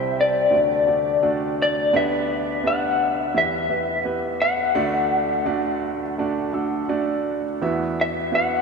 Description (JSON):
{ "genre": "acoustic folk-pop ballad", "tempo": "85 BPM", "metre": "4/4", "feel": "straight", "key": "unclear", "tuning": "A4 = 440 Hz", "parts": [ { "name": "electric guitar through a small old amp", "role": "melody", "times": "0.0-8.6 s", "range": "D5 to F#5", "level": "-21 LUFS", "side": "left 2 dB", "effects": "tremolo" }, { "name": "warm upright piano", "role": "accompaniment", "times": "0.0-8.6 s", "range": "C2 to E5", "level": "-24 LUFS", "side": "right 3 dB", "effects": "none" } ], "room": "wet cathedral reverb, RT60 6.5 s", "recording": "in a vast, echoing space", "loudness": "-19 LUFS", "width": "side -4 dB against mid", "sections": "0.0-7.6 A section; 7.6-8.6 B section", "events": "none", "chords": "0.0 C; 0.5 D; 1.9 G/D; 3.3 Em; 4.8 D; 7.6 Esus2" }